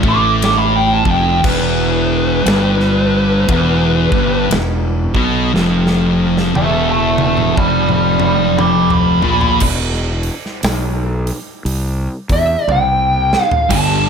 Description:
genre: stoner and doom metal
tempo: 59 BPM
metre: 4/4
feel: swing 62% on 8ths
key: E phrygian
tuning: A4 = 440 Hz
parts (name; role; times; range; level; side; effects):
- thick fuzz guitar; riff; 0.0-14.1 s; E2 to G3; -18 LUFS; left 13 dB; distortion
- thick fuzz guitar; riff; 0.0-14.1 s; E2 to G3; -18 LUFS; right 9 dB; distortion
- fuzz fingered electric bass; bass; 0.0-14.1 s; E1 to E2; -19 LUFS; equal; overdrive
- big rock drum kit; drums; 0.0-14.0 s; crash cymbal, hi-hat, kick drum, ride cymbal, snare drum, toms; -20 LUFS; equal; none
- fuzz lead guitar; melody; 0.1-14.1 s; B4 to D6; -16 LUFS; right 1 dB; distortion, slapback echo
room: light reverb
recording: none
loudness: -12 LUFS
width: side -6 dB against mid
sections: 0.0-9.6 A section; 9.6-13.7 B section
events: lead electric guitar solo 0.0-9.6; drum fill 5.5-9.6, 12.7-13.7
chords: 0.0 Em

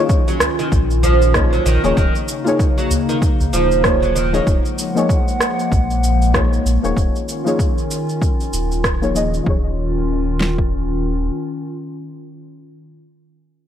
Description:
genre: organic downtempo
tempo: 96 BPM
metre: 4/4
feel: swing 58% on 16ths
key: unclear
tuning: A4 = 440 Hz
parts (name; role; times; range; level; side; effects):
- deep mellow chord stab; accompaniment; 0.0-12.7 s; F3 to Eb5; -22 LUFS; left 3 dB; chorus, sidechain pumping, ping-pong delay
- warbly tape-like pad; sustained chords; 0.0-12.7 s; Db3 to Gb5; -23 LUFS; left 1 dB; chorus, built-in reverb, sidechain pumping
- deep house drum kit; drums; 0.1-10.7 s; kick drum, snare drum; -18 LUFS; equal; overdrive
- electronic cabasa and rim click; drums; 0.1-9.4 s; none; -23 LUFS; right 1 dB; none
- oud; arpeggios; 0.3-4.4 s; Eb3 to Gb3; -20 LUFS; right 4 dB; ping-pong delay
- udu; percussion; 0.4-3.5 s; none; -22 LUFS; equal; none
- warm sub bass; bass; 0.7-11.3 s; Eb1 to Bb1; -19 LUFS; equal; tube saturation, sidechain pumping
room: light reverb, digital ambience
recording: none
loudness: -15 LUFS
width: side -10 dB against mid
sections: 0.0-9.5 A section; 9.5-12.0 B section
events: none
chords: 0.0 Ebm11; 7.0 Dbadd9/Eb

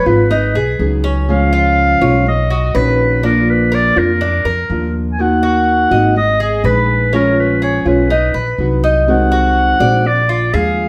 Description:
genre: latin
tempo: 123 BPM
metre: 4/4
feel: straight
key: unclear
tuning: A4 = 441 Hz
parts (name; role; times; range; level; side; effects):
- clear clarinet; melody; 0.0-10.9 s; Bb4 to Ab5; -19 LUFS; equal; plate reverb
- nylon-string guitar; accompaniment; 0.0-10.9 s; C3 to Ab4; -19 LUFS; equal; none
- Cuban tres; arpeggios; 0.0-10.9 s; Db4 to Eb5; -22 LUFS; equal; none
- upright bass; bass; 0.1-10.9 s; Ab1 to F2; -19 LUFS; equal; none
room: moderate large studio reverb, RT60 0.9 s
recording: none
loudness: -14 LUFS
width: mono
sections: 0.0-10.9 A section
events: none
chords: 0.3 Abm7; 1.3 Db; 2.3 Badd9; 3.2 Bb; 5.2 Ebm; 6.2 Abm; 7.1 Bbm7; 8.1 B; 9.1 Ab7/C; 10.1 Bb7

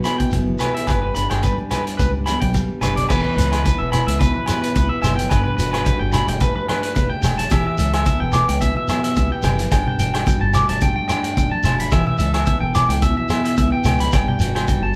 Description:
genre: highlife guitar band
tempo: 109 BPM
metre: 4/4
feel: swing 53% on 16ths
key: unclear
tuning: A4 = 440 Hz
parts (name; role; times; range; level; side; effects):
- picked steel-string acoustic guitar; accompaniment; 0.0-15.0 s; G2 to A4; -27 LUFS; equal; none
- electric guitar at the edge of break-up; arpeggios; 0.0-14.9 s; B4 to D6; -26 LUFS; equal; none
- shekere; percussion; 0.0-14.8 s; none; -29 LUFS; equal; none
- vintage drum kit; drums; 0.1-14.8 s; crash cymbal, hi-hat, kick drum, rim click; -25 LUFS; equal; none
- agogo bells; percussion; 0.1-14.7 s; none; -31 LUFS; equal; none
- congas; percussion; 0.1-14.8 s; none; -30 LUFS; equal; none
- fingered electric bass; bass; 0.3-15.0 s; E1 to C#2; -25 LUFS; equal; none
room: moderate large studio reverb, RT60 0.9 s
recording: band playing live in one room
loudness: -19 LUFS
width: mono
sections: 0.0-3.1 A section; 3.1-15.0 B section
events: drum fill 2.5-3.1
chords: 0.0 Em; 0.9 G; 3.1 Em; 9.7 Gadd9; 11.9 Em; 14.1 Gsus2

